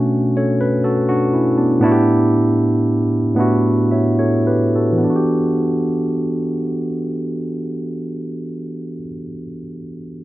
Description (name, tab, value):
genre	R&B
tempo	34-42 BPM (dotted quarters)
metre	6/8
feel	straight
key	E dorian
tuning	A4 = 440 Hz
part	barky tine electric piano	accompaniment	0.0-10.2 s	A2 to E5	-16 LUFS	equal	overdrive
room	light reverb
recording	low-pass filter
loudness	-15 LUFS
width	side -16 dB against mid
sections	0.0-5.0 A section; 5.0-8.5 B section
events	slowing down 0.0-5.0; filter sweep 0.0-5.0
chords	0.0 Bm9; 1.8 A7sus4; 5.0 Em9